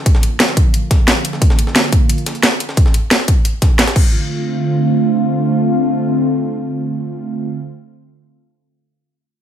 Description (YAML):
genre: dark technical drum and bass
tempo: 177 BPM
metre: 4/4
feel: straight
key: D minor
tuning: A4 = 440 Hz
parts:
  - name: sweeping resonant pad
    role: sustained chords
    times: 0.0-7.6 s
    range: D3 to F4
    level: -18 LUFS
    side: right 1 dB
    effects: lush chorus, sidechain pumping
  - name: breakbeat sampler-style drum kit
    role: drums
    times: 0.1-4.0 s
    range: hi-hat, snare drum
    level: -24 LUFS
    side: equal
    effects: high-pass filter on hats, studio reverb, high-pass filter on snare
  - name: drum and bass drum kit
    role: drums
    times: 0.1-4.0 s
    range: crash cymbal, hi-hat, snare drum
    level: -15 LUFS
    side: equal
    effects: overdrive, studio reverb
  - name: electronic kick drum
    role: drums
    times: 0.1-4.0 s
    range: none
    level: -12 LUFS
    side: equal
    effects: studio reverb
room: little or no reverb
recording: none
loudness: -13 LUFS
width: side -10 dB against mid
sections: 0.0-4.1 A section; 4.1-6.8 B section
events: filter sweep on analog synth pad 0.0-4.1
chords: 0.0 Bb; 4.0 Dm7